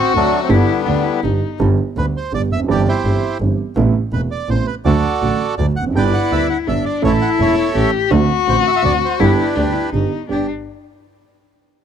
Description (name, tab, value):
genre	tango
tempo	166 BPM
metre	3/4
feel	rubato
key	G major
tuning	A4 = 440 Hz
part	bandoneon	melody	0.0-10.5 s	D3 to G5	-20 LUFS	right 3 dB	none
part	warm cello	second line	0.0-1.6, 5.9-10.5 s	D4 to G4	-18 LUFS	left 8 dB	none
part	dark concert grand piano	accompaniment	0.1-10.4 s	E1 to A4	-19 LUFS	right 5 dB	none
part	clear double bass	bass	0.1-10.4 s	E1 to D2	-20 LUFS	equal	none
room	little or no reverb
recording	dry, close 1970s-style studio recording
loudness	-14 LUFS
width	side -8 dB against mid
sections	0.0-1.6 A section; 1.6-10.3 B section; 10.3-11.4 C section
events	none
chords	0.0 D7; 0.5 G; 2.7 C/G; 3.8 Amadd9; 4.9 D; 6.0 G; 7.0 A; 8.1 D7; 9.2 G